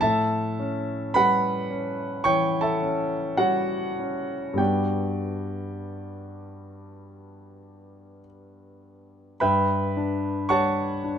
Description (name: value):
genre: classical, impressionist solo piano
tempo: 48-56 BPM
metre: 4/4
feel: rubato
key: G lydian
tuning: A4 = 440 Hz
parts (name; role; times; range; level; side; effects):
- warm concert grand piano; solo; 0.0-11.2 s; G2 to C#6; -23 LUFS; equal; none
room: light reverb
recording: close, detailed microphones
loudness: -22 LUFS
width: side -8 dB against mid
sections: 0.0-9.4 A section; 9.4-11.2 A section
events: none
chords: 0.0 A9; 4.6 Gmaj7